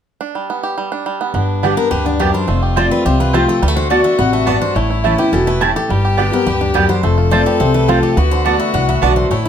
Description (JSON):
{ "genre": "bluegrass", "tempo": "211 BPM", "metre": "4/4", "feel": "straight", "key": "G major", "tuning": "A4 = 440 Hz", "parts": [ { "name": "bluegrass banjo", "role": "melody", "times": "0.2-9.5 s", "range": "D3 to G4", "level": "-22 LUFS", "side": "right 4 dB", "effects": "none" }, { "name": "clear fiddle", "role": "second line", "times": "1.3-9.5 s", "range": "D4 to A4", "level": "-21 LUFS", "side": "left 4 dB", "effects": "none" }, { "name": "picked steel-string acoustic guitar", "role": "accompaniment", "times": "1.3-9.5 s", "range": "F2 to G4", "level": "-17 LUFS", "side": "left 2 dB", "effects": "none" }, { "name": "upright bass", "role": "bass", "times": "1.3-9.5 s", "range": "E1 to D2", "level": "-18 LUFS", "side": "equal", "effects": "none" }, { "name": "mandolin", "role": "stabs", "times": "1.6-9.1 s", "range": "A3 to A5", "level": "-18 LUFS", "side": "right 7 dB", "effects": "none" }, { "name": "picked steel-string acoustic guitar", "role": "melody", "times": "1.8-9.5 s", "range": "D4 to F#5", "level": "-21 LUFS", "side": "left 3 dB", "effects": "none" } ], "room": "moderate studio reverb, RT60 0.6 s", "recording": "none", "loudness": "-12 LUFS", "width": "side -8 dB against mid", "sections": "0.2-1.3 A section; 1.3-9.5 B section", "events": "none", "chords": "0.2 G; 2.5 F; 3.6 D6; 4.8 A; 5.9 G; 7.0 F; 8.2 D6", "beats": "| 0.20 0.49 0.77 1.06 | 1.34 1.63 1.91 2.20 | 2.48 2.77 3.05 3.33 | 3.62 3.90 4.19 4.47 | 4.76 5.04 5.33 5.61 | 5.90 6.18 6.47 6.75 | 7.04 7.32 7.61 7.89 | 8.17 8.46 8.74 9.03 | 9.31" }